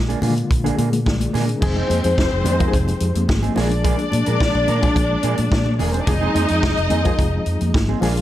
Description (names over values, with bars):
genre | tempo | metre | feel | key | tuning
disco | 108 BPM | 4/4 | straight | F dorian | A4 = 441 Hz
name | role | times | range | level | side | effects
reed electric piano | accompaniment | 0.0-8.2 s | D3 to D5 | -24 LUFS | left 3 dB | fast tremolo
vintage muted fingered electric bass | bass | 0.0-8.2 s | E1 to Bb2 | -22 LUFS | equal | none
mellow electric guitar | accompaniment | 0.1-8.2 s | Bb3 to Bb4 | -27 LUFS | right 7 dB | none
vintage drum kit | drums | 0.1-8.2 s | crash cymbal, hi-hat, kick drum, snare drum | -22 LUFS | equal | none
congas | percussion | 0.1-8.2 s | none | -28 LUFS | left 4 dB | none
dark studio string section | second line | 1.6-8.2 s | Ab3 to F5 | -22 LUFS | left 2 dB | none
room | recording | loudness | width
little or no reverb | none | -16 LUFS | side -13 dB against mid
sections
0.0-1.6 A section; 1.6-8.2 B section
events
none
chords
0.0 Bb7; 1.6 Fm7; 3.6 Bb7; 6.1 Fm7